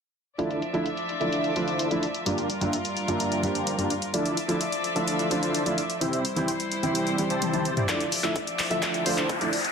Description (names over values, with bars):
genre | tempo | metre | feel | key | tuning
EDM, festival progressive house | 128 BPM | 4/4 | straight | D minor | A4 = 440 Hz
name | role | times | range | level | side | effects
dark concert grand piano | accompaniment | 0.4-9.5 s | G2 to E5 | -30 LUFS | right 2 dB | sidechain pumping, ping-pong delay
warm studio string section | sustained chords | 0.4-9.7 s | F3 to E5 | -31 LUFS | left 1 dB | sidechain pumping, low-pass filter
dense compressed supersaw | riff | 0.4-9.6 s | C4 to A5 | -29 LUFS | equal | sidechain pumping, low-pass filter, ping-pong delay
big-room dance drum kit | drums | 0.4-9.7 s | handclaps, hi-hat, toms | -30 LUFS | left 2 dB | low-pass filter on hats, low-pass filter on toms, low-pass filter on snare
plucky unison lead | arpeggios | 7.9-9.6 s | C5 to E5 | -32 LUFS | left 1 dB | vintage 12-bit sampler grit, sidechain pumping, ping-pong delay
electronic kick drum | drums | 7.9-9.4 s | none | -36 LUFS | equal | overdrive, high-pass filter on kick
riser | sound effects | 8.5-9.7 s | none | -32 LUFS | left 1 dB | none
room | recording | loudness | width
moderate lush hall reverb, RT60 1.6 s, digital ambience | dense, heavily limited modern master | -24 LUFS | side -6 dB against mid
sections
0.4-7.9 A section; 7.9-9.7 B section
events
filter sweep on drum 0.4-7.9; drum fill 7.4-7.9, 7.9-9.7; build-up 7.9-9.7; filter sweep on supersaw synth 7.9-9.7; riser 8.5-9.7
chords
0.4 Dmadd9; 2.3 Gm7; 4.1 Dmadd9; 6.0 C; 7.9 Dmadd9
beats
| 0.39 0.86 1.33 1.79 | 2.26 2.73 3.20 3.67 | 4.14 4.61 5.08 5.54 | 6.01 6.48 6.95 7.42 | 7.89 8.36 8.83 9.29